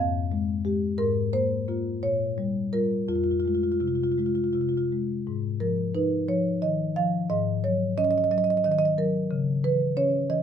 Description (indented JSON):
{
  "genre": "classical, contemporary piece for solo marimba",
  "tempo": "54-62 BPM (dotted quarters)",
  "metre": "6/8",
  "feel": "rubato",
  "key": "F minor, G# minor from 5.3 s",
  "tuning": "A4 = 440 Hz",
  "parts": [
    { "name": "marimba with soft mallets", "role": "solo", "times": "0.0-10.4 s", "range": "F2 to F5", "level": "-23 LUFS", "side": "equal", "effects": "none" }
  ],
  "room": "light reverb",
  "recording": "none",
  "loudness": "-23 LUFS",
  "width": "side -8 dB against mid",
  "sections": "0.0-5.3 A section; 5.3-10.4 B section",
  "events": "none",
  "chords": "0.0 Fmadd9; 1.0 Ab69; 2.0 Bbm6; 3.1 Fm; 5.3 G#5; 7.3 D#m7/G#; 9.3 C#m",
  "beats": "| 0.98 2.02 | 3.09 4.17 | 5.26 6.29 | 7.30 8.31 | 9.31 10.29"
}